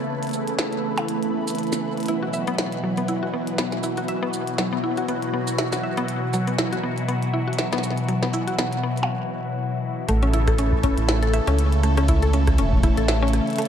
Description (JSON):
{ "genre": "IDM", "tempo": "120 BPM", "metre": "4/4", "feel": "swing 56% on 16ths", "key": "A major", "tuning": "A4 = 441 Hz", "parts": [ { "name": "phased analog pad", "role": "sustained chords", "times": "0.0-13.7 s", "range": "B2 to A4", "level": "-25 LUFS", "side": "equal", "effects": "phaser, chorus" }, { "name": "flickering grainy texture", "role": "texture", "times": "0.0-13.7 s", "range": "B3 to C#5", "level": "-35 LUFS", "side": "right 1 dB", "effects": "built-in reverb" }, { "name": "glitchy drum kit", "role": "drums", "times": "0.2-13.7 s", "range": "hi-hat, percussion blips, rim click, shaker, snare drum", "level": "-29 LUFS", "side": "equal", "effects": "studio ambience, digital delay" }, { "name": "mallet-like synth pluck", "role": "arpeggios", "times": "2.1-13.7 s", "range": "F#3 to E5", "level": "-27 LUFS", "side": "left 1 dB", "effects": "chorus, digital delay" }, { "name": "round analog bass", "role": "bass", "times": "10.1-13.4 s", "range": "E1 to C#2", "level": "-20 LUFS", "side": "equal", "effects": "tube saturation" }, { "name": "electronic kick drum", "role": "drums", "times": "10.1-12.9 s", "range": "none", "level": "-22 LUFS", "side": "equal", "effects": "studio ambience" } ], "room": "moderate lush hall reverb, RT60 1.7 s", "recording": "dark, warm production", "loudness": "-20 LUFS", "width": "side -9 dB against mid", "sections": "0.0-10.1 A section; 10.1-13.7 B section", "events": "break 9.1-10.1", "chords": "0.0 A; 2.1 Esus2; 10.1 A" }